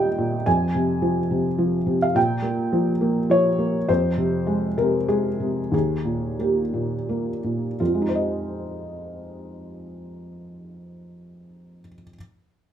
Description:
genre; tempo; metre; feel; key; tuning
classical, contemporary piece for solo felt piano; 82-108 BPM; 3/4; rubato; F minor; A4 = 438 Hz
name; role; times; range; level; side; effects
felt-muted upright piano; solo; 0.0-12.2 s; Eb2 to Ab5; -21 LUFS; equal; none
room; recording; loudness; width
moderate large studio reverb, RT60 0.8 s; band playing live in one room; -20 LUFS; side -9 dB against mid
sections
0.0-7.8 A section; 7.8-12.1 B section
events
slowing down 3.0-7.8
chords
0.5 Fm; 2.2 Bbm; 3.9 Fm; 5.7 Eb; 7.8 Fm7

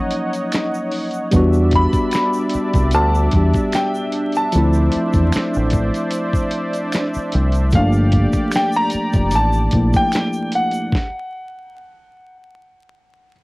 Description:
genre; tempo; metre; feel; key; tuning
R&B, neo-soul; 75 BPM; 4/4; swing 54% on 16ths; unclear; A4 = 439 Hz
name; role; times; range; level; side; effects
tine electric piano; accompaniment; 0.0-11.0 s; E#3 to G4; -20 LUFS; equal; medium stereo tremolo, cassette tape
warm analog pad; sustained chords; 0.0-10.9 s; G3 to F#5; -25 LUFS; right 1 dB; chorus, tremolo, cassette tape
dusty soul sampler-style drum kit; drums; 0.1-11.1 s; finger snaps, hi-hat, kick drum, snare drum; -21 LUFS; equal; cassette tape
tube shaker and finger snaps; percussion; 0.3-10.9 s; none; -34 LUFS; right 3 dB; none
deep dub fingered electric bass; bass; 1.3-9.9 s; F1 to E2; -16 LUFS; equal; none
clear grand piano; melody; 1.8-13.3 s; F5 to B5; -21 LUFS; equal; none
room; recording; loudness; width
light reverb; home recording on cassette, vinyl crackle; -15 LUFS; side -23 dB against mid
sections
0.0-13.4 A section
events
stop 10.9-13.4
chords
0.0 D#m9; 1.3 Em9; 4.5 Dm9; 7.7 Gm9; 10.9 N.C.

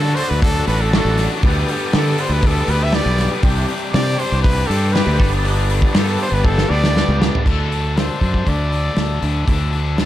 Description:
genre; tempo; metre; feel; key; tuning
indie rock; 119 BPM; 4/4; straight; D mixolydian; A4 = 440 Hz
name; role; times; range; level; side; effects
bright trumpet; melody; 0.0-9.2 s; A4 to E5; -24 LUFS; equal; tape echo
tonewheel organ; sustained chords; 0.0-7.4 s; G4 to D6; -29 LUFS; left 1 dB; slow rotary speaker, overdrive
distorted electric guitar; riff; 0.0-10.1 s; G2 to A4; -24 LUFS; left 5 dB; distortion
twangy electric guitar; riff; 0.0-7.5 s; C3 to A4; -27 LUFS; right 6 dB; ensemble chorus, tape echo
fuzz fingered electric bass; bass; 0.0-10.1 s; G1 to D3; -18 LUFS; equal; overdrive
loose indie drum kit; drums; 0.2-10.1 s; crash cymbal, hi-hat, kick drum, snare drum, toms; -20 LUFS; equal; none
room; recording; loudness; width
little or no reverb; dark, warm production; -15 LUFS; side -13 dB against mid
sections
0.0-7.5 A section; 7.5-10.1 B section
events
drum fill 6.5-7.5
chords
0.0 D; 1.4 Gadd9/D; 3.4 Csus2; 5.2 Gadd9; 7.5 Dsus2

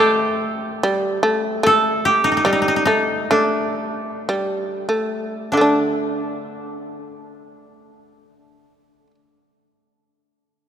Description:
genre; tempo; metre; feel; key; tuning
japanese traditional, Japanese chamber music; 45-76 BPM; 2/4; rubato; D in sen; A4 = 438 Hz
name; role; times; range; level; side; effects
koto; melody; 0.0-9.1 s; D4 to A5; -19 LUFS; equal; none
shamisen; second line; 0.0-9.1 s; D3 to D4; -20 LUFS; equal; none
room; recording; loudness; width
wet cathedral reverb, RT60 4.5 s; none; -17 LUFS; side -9 dB against mid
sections
0.0-5.5 A section; 5.5-10.6 B section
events
slowing down 1.6-5.5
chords
none

